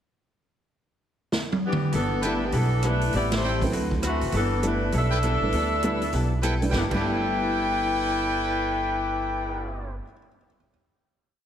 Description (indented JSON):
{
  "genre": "jazz, big band swing",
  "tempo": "200 BPM",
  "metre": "4/4",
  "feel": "swing 62% on 8ths",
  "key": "G major",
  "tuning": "A4 = 440 Hz",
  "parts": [
    { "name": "swinging big-band drum kit", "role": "drums", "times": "1.3-7.0 s", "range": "crash cymbal, hi-hat, kick drum, ride cymbal, rim click, snare drum, toms", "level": "-30 LUFS", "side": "right 1 dB", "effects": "none" },
    { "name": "clear saxophone section", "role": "melody", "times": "1.7-9.9 s", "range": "E3 to G5", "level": "-27 LUFS", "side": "left 2 dB", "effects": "none" },
    { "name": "vintage hollow-body jazz guitar", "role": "accompaniment", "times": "1.9-10.5 s", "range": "A2 to B4", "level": "-32 LUFS", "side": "left 2 dB", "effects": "none" },
    { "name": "upright bass", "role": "bass", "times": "1.9-10.0 s", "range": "F#1 to D2", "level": "-27 LUFS", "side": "right 1 dB", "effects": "none" },
    { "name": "brilliant trumpet section", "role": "stabs", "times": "2.2-9.9 s", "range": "E4 to G5", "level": "-31 LUFS", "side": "right 2 dB", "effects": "none" },
    { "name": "warm baby grand piano", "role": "accompaniment", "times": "3.6-10.7 s", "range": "G2 to G6", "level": "-32 LUFS", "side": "right 2 dB", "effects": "none" }
  ],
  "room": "moderate scoring stage reverb, RT60 1.6 s",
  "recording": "heavily compressed radio sound",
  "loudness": "-22 LUFS",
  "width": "side -9 dB against mid",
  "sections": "0.7-1.9 pickup bar; 1.9-6.7 A section; 6.7-9.1 final chord",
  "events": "drum fill 1.3-1.9; band accent 3.3",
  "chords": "0.7 G6; 1.9 G69; 3.1 Am7; 3.7 D13; 4.3 G69",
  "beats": "| 0.73 1.03 1.33 1.63 | 1.93 2.23 2.53 2.83 | 3.13 3.43 3.73 4.03 | 4.33 4.62 4.92 5.22 | 5.52 5.82 6.12 6.42 | 6.72 7.02 7.32 7.62 | 7.92 8.22 8.52 8.82"
}